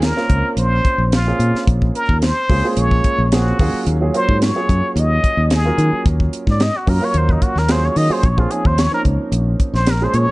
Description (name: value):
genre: electric jazz fusion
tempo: 110 BPM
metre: 4/4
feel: straight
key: Bb minor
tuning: A4 = 441 Hz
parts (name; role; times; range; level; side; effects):
- trumpet with plunger mute; melody; 0.0-10.3 s; Eb4 to Eb5; -20 LUFS; equal; none
- warm grand piano; accompaniment; 0.0-10.3 s; F3 to Bb4; -23 LUFS; right 2 dB; none
- fingered electric bass; bass; 0.0-10.3 s; Bb1 to Eb3; -17 LUFS; equal; none
- tight funk drum kit; drums; 0.0-10.3 s; hi-hat, kick drum, snare drum; -18 LUFS; equal; none
room: light reverb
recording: dark, warm production, nothing above 10.3 kHz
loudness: -14 LUFS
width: side -20 dB against mid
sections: 0.0-10.3 A section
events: muted trumpet solo 0.0-10.3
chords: 0.0 Bbm9; 3.6 Ebm11; 8.2 Bbm9